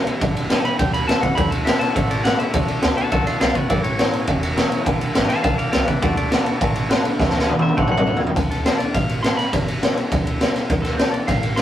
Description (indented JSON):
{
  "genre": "rockabilly",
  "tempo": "206 BPM",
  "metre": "4/4",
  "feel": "straight",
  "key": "D major",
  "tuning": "A4 = 436 Hz",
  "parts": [
    { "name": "clean electric guitar", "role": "melody", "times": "0.0-11.6 s", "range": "F#4 to C6", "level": "-25 LUFS", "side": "left 1 dB", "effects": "none" },
    { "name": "picked steel-string acoustic guitar", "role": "accompaniment", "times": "0.0-11.6 s", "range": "E2 to G4", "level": "-31 LUFS", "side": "left 3 dB", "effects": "none" },
    { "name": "twangy electric guitar", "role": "riff", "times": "0.0-8.3 s", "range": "G2 to B3", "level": "-28 LUFS", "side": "right 2 dB", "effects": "none" },
    { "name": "upright bass", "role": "bass", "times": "0.1-11.6 s", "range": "E1 to D2", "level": "-27 LUFS", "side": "equal", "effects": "none" },
    { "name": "raw garage drum kit", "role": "drums", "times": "0.1-11.6 s", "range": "kick drum, ride cymbal, snare drum, toms", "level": "-18 LUFS", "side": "equal", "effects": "none" }
  ],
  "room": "light reverb",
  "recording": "rough rehearsal-room recording",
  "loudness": "-17 LUFS",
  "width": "side -11 dB against mid",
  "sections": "0.0-8.4 A section; 8.4-11.6 B section",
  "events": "clean electric guitar solo 0.0-8.4; drum fill 7.2-8.4",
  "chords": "0.0 G; 1.4 D; 3.7 A; 4.9 G; 6.0 D; 9.5 G; 10.7 D"
}